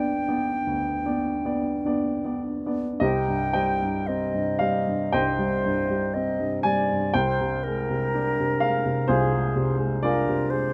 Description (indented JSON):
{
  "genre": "classical, romantic duo for flute and grand piano",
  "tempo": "49-64 BPM",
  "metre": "4/4",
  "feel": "rubato",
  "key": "C minor",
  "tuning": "A4 = 440 Hz",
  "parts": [
    { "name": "concert flute", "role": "melody", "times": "0.0-10.7 s", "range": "Ab4 to G5", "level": "-30 LUFS", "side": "equal", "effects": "none" },
    { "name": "warm baby grand piano", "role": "accompaniment", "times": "0.0-10.7 s", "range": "G1 to Ab5", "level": "-26 LUFS", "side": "equal", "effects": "none" }
  ],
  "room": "light reverb",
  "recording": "close, detailed microphones",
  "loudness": "-25 LUFS",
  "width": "mono",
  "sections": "0.0-3.0 A section; 3.0-10.7 B section",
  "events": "none",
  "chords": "0.0 G; 3.0 Cm; 7.1 Dm7b5/C"
}